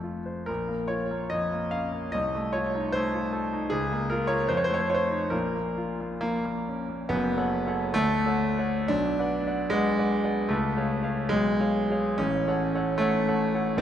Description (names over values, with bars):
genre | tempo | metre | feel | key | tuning
classical, romantic character piece for solo piano | 62-79 BPM | 2/4 | rubato | Bb minor, F# minor from 7.1 s | A4 = 437 Hz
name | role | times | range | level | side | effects
clear concert grand piano | solo | 0.0-13.8 s | F#1 to F#5 | -24 LUFS | equal | none
room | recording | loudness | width
wet scoring stage reverb, RT60 1.9 s | none | -24 LUFS | side -10 dB against mid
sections
0.0-7.1 A section; 7.1-13.8 B section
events
none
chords
0.5 Bbm; 2.1 F7/C; 3.7 Bbm/Db; 4.5 F7; 5.3 Bbm; 7.1 F#m; 7.9 Dmaj7; 8.9 Bm; 10.5 C#; 11.3 C#7/B; 12.2 F#m/A